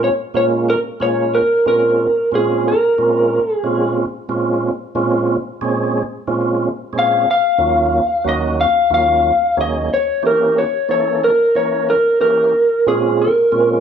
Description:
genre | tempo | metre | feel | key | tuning
blues | 91 BPM | 4/4 | straight | Bb minor | A4 = 439 Hz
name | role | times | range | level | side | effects
electric slide guitar | melody | 0.0-13.8 s | Ab4 to F5 | -14 LUFS | equal | none
percussive tonewheel organ | accompaniment | 0.0-13.8 s | Eb2 to Bb4 | -19 LUFS | right 2 dB | slow rotary speaker, overdrive, chorus vibrato
room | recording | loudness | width
moderate large studio reverb, RT60 1.1 s | band playing live in one room | -14 LUFS | side -8 dB against mid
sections
0.0-13.8 A section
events
none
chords
0.0 Bbm9; 7.3 Ebm9; 9.9 Edim7; 12.5 Bbm9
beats
0.02 0.68 1.34 | 2.00 2.65 3.31 3.97 | 4.63 5.29 5.95 6.61 | 7.27 7.92 8.58 9.24 | 9.90 10.56 11.22 11.88 | 12.54 13.20

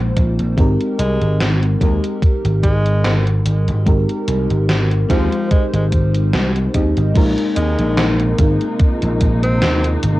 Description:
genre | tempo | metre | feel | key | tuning
vaporwave | 73 BPM | 4/4 | swing 54% on 16ths | Ab major | A4 = 436 Hz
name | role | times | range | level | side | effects
FM electric piano with soft pad layer | accompaniment | 0.0-10.2 s | Ab3 to Eb5 | -21 LUFS | left 1 dB | lush chorus, cassette tape, analog delay
vintage slap bass | bass | 0.0-10.2 s | Ab1 to Eb2 | -17 LUFS | equal | none
electronic kick drum | drums | 0.2-9.4 s | none | -15 LUFS | equal | cassette tape
gated 80s digital drum machine | drums | 0.2-10.2 s | crash cymbal, hi-hat, snare drum | -22 LUFS | equal | gated reverb, gated reverb snare, cassette tape
clear tenor saxophone | melody | 1.0-9.9 s | F3 to C4 | -25 LUFS | equal | cassette tape, tape echo
muted symphonic string section | sustained chords | 7.2-10.2 s | C3 to Eb4 | -25 LUFS | equal | cassette tape
room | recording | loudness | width
light reverb | home recording on cassette | -14 LUFS | side -17 dB against mid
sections
0.0-7.2 A section; 7.2-10.2 B section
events
none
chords
0.0 Bb9sus4; 0.6 Abmaj9; 7.2 Bb9sus4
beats
| 0.58 1.40 2.22 3.04 | 3.87 4.69 5.51 6.33 | 7.16 7.98 8.80 9.62

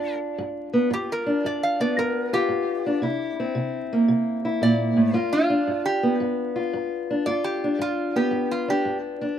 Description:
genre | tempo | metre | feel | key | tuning
acoustic country blues, solo or duo | 113 BPM | 4/4 | swing 68% on 8ths | G mixolydian | A4 = 438 Hz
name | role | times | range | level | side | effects
metal-body resonator slide guitar | melody | 0.0-9.0 s | F4 to F5 | -26 LUFS | right 2 dB | slapback echo
fingerpicked steel-string acoustic guitar | accompaniment | 0.0-9.4 s | G2 to F4 | -23 LUFS | equal | slapback echo
room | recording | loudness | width
little or no reverb | recorded outdoors, with no room sound, vinyl crackle, faint mains hum | -21 LUFS | side -9 dB against mid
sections
0.9-9.4 A section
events
none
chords
0.0 G7; 3.0 C7; 5.1 G7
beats
0.37 | 0.90 1.43 1.96 2.49 | 3.02 3.55 4.08 4.61 | 5.14 5.67 6.20 6.73 | 7.26 7.79 8.32 8.85

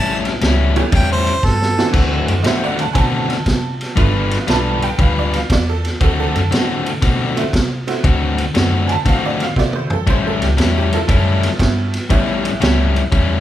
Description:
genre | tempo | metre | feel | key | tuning
electric blues shuffle | 118 BPM | 4/4 | swing 68% on 8ths | D mixolydian | A4 = 441 Hz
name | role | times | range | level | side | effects
warm harmonica | melody | 0.0-1.9 s | A4 to A5 | -20 LUFS | right 1 dB | none
overdriven electric guitar | riff | 0.0-13.4 s | A2 to B4 | -19 LUFS | left 4 dB | none
vintage muted fingered electric bass | bass | 0.0-13.4 s | G1 to C3 | -20 LUFS | equal | none
vintage drum kit | drums | 0.2-13.3 s | crash cymbal, kick drum, ride cymbal, snare drum, toms | -18 LUFS | equal | none
tack piano | accompaniment | 0.8-12.9 s | E3 to A5 | -23 LUFS | right 5 dB | none
room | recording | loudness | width
moderate large studio reverb, RT60 0.8 s | band playing live in one room | -14 LUFS | side -12 dB against mid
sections
0.0-1.9 A section; 1.9-13.4 A section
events
harmonica solo 0.0-1.9; drum fill 1.4-1.9, 9.6-10.1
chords
0.0 A7; 1.9 D7; 4.0 G7; 6.0 D7; 10.1 A7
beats
0.42 0.93 1.43 | 1.94 2.45 2.96 3.47 | 3.97 4.48 4.99 5.50 | 6.01 6.51 7.02 7.53 | 8.04 8.55 9.06 9.56 | 10.07 10.58 11.09 11.60 | 12.11 12.62 13.12

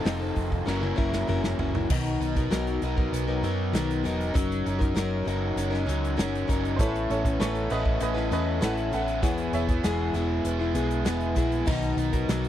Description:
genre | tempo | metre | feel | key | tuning
folk rock and heartland rock | 98 BPM | 4/4 | straight | unclear | A4 = 443 Hz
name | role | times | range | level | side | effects
picked plugged-in steel-string acoustic guitar | accompaniment | 0.0-12.5 s | B2 to B4 | -29 LUFS | left 5 dB | none
pedal harmonium | sustained chords | 0.0-12.5 s | B3 to Bb5 | -38 LUFS | right 3 dB | none
overdriven electric guitar | riff | 0.0-12.5 s | E2 to Gb4 | -31 LUFS | right 2 dB | none
hollow-body short-scale fingered electric bass | bass | 0.1-12.5 s | E1 to F#2 | -30 LUFS | right 1 dB | none
natural country drum kit | drums | 0.1-12.5 s | crash cymbal, hi-hat, kick drum, snare drum, toms | -28 LUFS | right 1 dB | none
bright upright piano | second line | 6.8-10.7 s | A4 to F#5 | -33 LUFS | right 4 dB | slapback echo
room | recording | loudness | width
little or no reverb | dry, close 1970s-style studio recording | -24 LUFS | side -11 dB against mid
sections
0.0-1.9 A section; 1.9-12.5 B section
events
drum fill 0.7-1.9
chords
0.0 F7; 0.7 Gb7; 1.9 Bmaj7; 4.4 F#6; 6.8 Aadd9; 9.2 E; 11.7 Bmaj7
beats
0.06 0.67 1.29 | 1.90 2.51 3.13 3.74 | 4.35 4.96 5.58 6.19 | 6.80 7.41 8.02 8.63 | 9.24 9.85 10.46 11.07 | 11.68 12.29

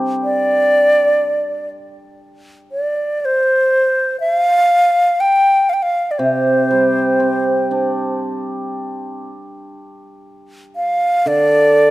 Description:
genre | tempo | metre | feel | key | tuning
chinese traditional, Chinese chamber ensemble | 60 BPM | 4/4 | rubato | unclear | A4 = 440 Hz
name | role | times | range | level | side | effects
hammered dulcimer | accompaniment | 0.0-11.9 s | C3 to G4 | -19 LUFS | right 1 dB | none
bright xiao | melody | 0.2-11.9 s | C5 to G5 | -14 LUFS | equal | none
room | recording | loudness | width
moderate concert hall reverb, RT60 2.1 s | close, detailed microphones | -13 LUFS | side -17 dB against mid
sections
0.0-11.9 A section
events
none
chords
none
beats
0.22 1.23 | 2.22 3.21 4.20 5.19 | 6.18 7.18 8.20 9.22 | 10.25 11.28

